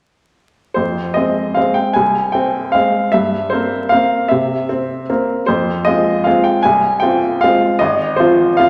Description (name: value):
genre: classical, piano waltz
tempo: 153 BPM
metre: 3/4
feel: uneven beats, rubato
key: F minor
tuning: A4 = 440 Hz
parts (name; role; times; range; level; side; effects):
- bright upright piano; solo; 0.7-8.7 s; Ab1 to Ab5; -15 LUFS; equal; none
room: wet recital hall reverb, RT60 1.5 s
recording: tape saturation, vinyl crackle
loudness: -15 LUFS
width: mono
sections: 0.8-8.7 A section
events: none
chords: 0.8 Fm; 3.1 C7/G; 5.5 Fm; 7.8 Fm/Ab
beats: | 0.77 1.16 1.57 | 1.96 2.35 2.75 | 3.14 3.52 3.92 | 4.31 4.69 5.09 | 5.48 5.87 6.26 | 6.64 7.02 7.43 | 7.82 8.19 8.59